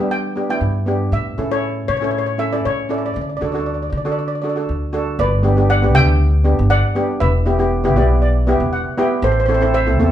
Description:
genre	calypso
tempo	118 BPM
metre	4/4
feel	straight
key	G major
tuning	A4 = 440 Hz
part	steel pan	melody	0.0-10.1 s	A4 to G5	-21 LUFS	equal	none
part	steel pan	accompaniment	0.0-10.1 s	B3 to G5	-20 LUFS	equal	none
part	upright bass	bass	0.0-10.1 s	E1 to G3	-18 LUFS	equal	none
room	moderate large studio reverb, RT60 0.9 s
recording	band playing live in one room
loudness	-15 LUFS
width	side -11 dB against mid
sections	0.0-5.2 A section; 5.2-10.1 B section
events	steel pan fill 7.7-9.2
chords	0.0 G6; 1.1 A; 3.2 D; 5.2 G; 7.2 Em; 9.2 Am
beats	0.10 0.61 | 1.12 1.63 2.14 2.65 | 3.15 3.66 4.17 4.68 | 5.18 5.69 6.20 6.70 | 7.21 7.71 8.22 8.72 | 9.23 9.73

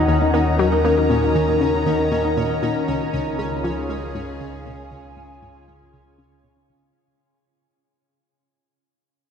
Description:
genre	ambient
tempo	118 BPM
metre	4/4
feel	straight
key	unclear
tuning	A4 = 440 Hz
part	phased analog pad	sustained chords	0.0-6.9 s	Db3 to Bb5	-22 LUFS	left 1 dB	phaser, chorus, shimmer reverb
part	Celtic harp	arpeggios	0.0-5.3 s	Eb4	-26 LUFS	left 2 dB	auto-pan, tape echo, shimmer reverb
part	warm sub bass	bass	0.0-6.9 s	Db2 to Eb2	-26 LUFS	equal	none
part	pulsing gated texture	texture	0.0-7.0 s	Db4 to Db5	-28 LUFS	left 3 dB	chorus, built-in reverb, shimmer reverb
part	analog pluck	riff	0.1-6.8 s	Db2 to Bb3	-25 LUFS	left 1 dB	chorus, tape echo, shimmer reverb
room	wet huge ambient reverb, RT60 7.5 s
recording	dark, warm production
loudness	-18 LUFS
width	side -7 dB against mid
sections	0.0-6.9 A section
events	fade-out 0.0-6.9; filter sweep on synth arpeggio sound 0.0-6.9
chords	0.0 Ebm; 2.9 Db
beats	0.34 | 0.84 1.35 1.86 2.37 | 2.88 3.39 3.90 4.40 | 4.91 5.42 5.93 6.44

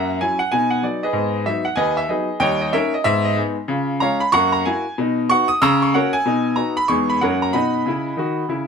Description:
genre	jazz, stride piano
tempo	188 BPM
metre	4/4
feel	swing 64% on 8ths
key	B major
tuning	A4 = 440 Hz
part	clear baby grand piano	solo	0.0-8.7 s	D#2 to E6	-17 LUFS	equal	none
room	moderate studio reverb, RT60 0.7 s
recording	close, detailed microphones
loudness	-17 LUFS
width	side -6 dB against mid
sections	0.0-8.7 A section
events	none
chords	0.0 F#7; 0.5 B; 1.1 G#m7; 2.4 D#7; 3.1 G#m; 3.7 C#; 4.3 F#7; 5.0 B; 5.6 F#/C#; 6.3 B; 6.9 Emaj7; 7.2 F#; 7.5 B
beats	0.19 0.51 0.83 | 1.15 1.47 1.78 2.10 | 2.42 2.74 3.06 3.38 | 3.70 4.02 4.34 4.66 | 4.98 5.30 5.62 5.93 | 6.25 6.57 6.89 7.21 | 7.53 7.85 8.17 8.48

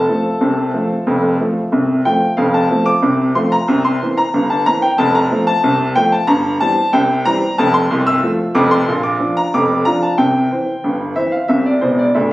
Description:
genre	ragtime piano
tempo	92 BPM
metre	2/4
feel	straight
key	F major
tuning	A4 = 440 Hz
part	clear upright piano	solo	0.0-12.3 s	C1 to E6	-13 LUFS	equal	none
room	light reverb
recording	recorded on a phone in the room, studio reverb, compression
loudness	-13 LUFS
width	side -17 dB against mid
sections	0.0-2.4 A section; 2.4-12.3 A section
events	upright piano fill 11.8-12.3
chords	0.0 F; 3.7 C7; 5.0 F; 6.3 C/G; 7.6 F; 8.9 Bb; 10.2 C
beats	0.41 | 1.07 1.72 | 2.38 3.03 | 3.69 4.34 | 4.99 5.63 | 6.28 6.93 | 7.58 8.23 | 8.88 9.53 | 10.18 10.84 | 11.50 12.16

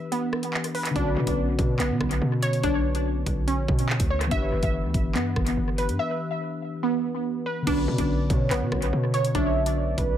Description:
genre	hip hop, drill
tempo	143 BPM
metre	4/4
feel	half-time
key	B minor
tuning	A4 = 435 Hz
part	mellow tine electric piano	accompaniment	0.0-10.2 s	D3 to B4	-30 LUFS	left 4 dB	phaser, low-pass filter
part	warbly dusty pluck	arpeggios	0.0-10.2 s	B3 to E5	-28 LUFS	right 2 dB	chorus, phaser, low-pass filter, analog delay
part	drill drum kit	drums	0.1-10.1 s	crash cymbal, handclaps, hi-hat, kick drum, rim click	-28 LUFS	right 1 dB	analog delay
part	hard-hitting 808-style bass	bass	1.0-10.2 s	G1 to B2	-27 LUFS	equal	none
part	warm velvety synth lead	second line	7.7-10.2 s	B4 to E5	-31 LUFS	right 2 dB	chorus, analog delay
room	light reverb, digital ambience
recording	echo-heavy mix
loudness	-22 LUFS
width	side -10 dB against mid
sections	0.0-7.7 A section; 7.7-10.2 B section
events	break 0.0-1.0, 6.0-7.7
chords	0.0 G6; 1.0 Bmadd9; 4.3 G6; 7.7 Bmadd9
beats	0.12 0.54 | 0.96 1.38 1.80 2.22 | 2.64 3.06 3.48 3.89 | 4.31 4.73 5.15 5.57 | 5.99 6.41 6.83 7.25 | 7.67 8.09 8.51 8.93 | 9.35 9.77

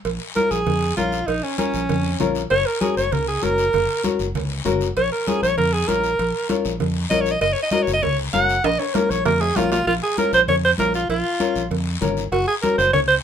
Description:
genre	latin, cumbia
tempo	196 BPM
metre	4/4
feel	straight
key	Bb minor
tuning	A4 = 439 Hz
part	fingered electric bass	bass	0.0-13.2 s	Gb1 to F2	-25 LUFS	equal	none
part	congas	percussion	0.1-13.1 s	none	-28 LUFS	equal	none
part	cowbell and timbales	percussion	0.1-13.1 s	none	-28 LUFS	right 8 dB	none
part	guiro	percussion	0.1-13.2 s	none	-33 LUFS	left 6 dB	none
part	bright alto saxophone	melody	0.4-13.2 s	Db4 to Gb5	-19 LUFS	right 1 dB	none
part	nylon-string guitar	accompaniment	0.4-12.8 s	Db4 to Bb4	-24 LUFS	left 7 dB	none
room	moderate studio reverb, RT60 0.6 s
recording	minimal, uncompressed stereo recording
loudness	-18 LUFS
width	side -8 dB against mid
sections	0.1-9.9 A section; 9.9-13.2 B section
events	alto saxophone solo 0.1-9.9; drum fill 8.6-9.9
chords	0.1 Bbm; 2.5 Gb; 5.0 Bbm; 7.4 Gb; 8.6 Bbm; 12.3 Gb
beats	| 0.05 0.36 0.67 0.97 | 1.28 1.59 1.90 2.20 | 2.51 2.82 3.12 3.43 | 3.74 4.04 4.35 4.66 | 4.96 5.27 5.58 5.88 | 6.19 6.50 6.80 7.11 | 7.42 7.72 8.03 8.34 | 8.64 8.95 9.26 9.56 | 9.87 10.18 10.48 10.79 | 11.10 11.40 11.71 12.02 | 12.32 12.63 12.94

